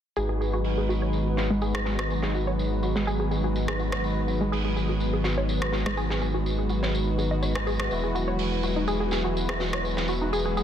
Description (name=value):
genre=progressive house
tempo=124 BPM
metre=4/4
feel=straight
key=G# minor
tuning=A4 = 440 Hz
part: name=airy breathy pad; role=sustained chords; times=0.2-10.6 s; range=D#3 to F#4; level=-32 LUFS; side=right 2 dB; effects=chorus
part: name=wide unison pluck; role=arpeggios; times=0.2-10.6 s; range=G#3 to G#5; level=-31 LUFS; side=equal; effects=ping-pong delay
part: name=soft supersaw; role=stabs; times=0.2-10.6 s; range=G#3 to B4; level=-31 LUFS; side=left 1 dB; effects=low-pass filter, ping-pong delay
part: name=saturated sub bass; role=bass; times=0.2-10.6 s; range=E1 to G#1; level=-29 LUFS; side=equal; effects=none
part: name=crisp fusion drum kit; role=drums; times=0.2-10.6 s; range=hi-hat, snare drum, tambourine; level=-36 LUFS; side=right 1 dB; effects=high-pass filter on hats, low-pass filter on hats, high-pass filter on snare, low-pass filter on snare, high-pass filter on perc, low-pass filter on perc, high-pass filter on room, low-pass filter on room
part: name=electronic rim click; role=drums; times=1.7-9.8 s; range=none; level=-33 LUFS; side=equal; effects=none
room=moderate concert hall reverb, RT60 1.9 s, small room ambience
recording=dense, heavily limited modern master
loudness=-24 LUFS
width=side -9 dB against mid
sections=0.2-10.6 A section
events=filter sweep on synth pluck 0.2-10.6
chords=0.2 G#m7; 7.9 Eadd9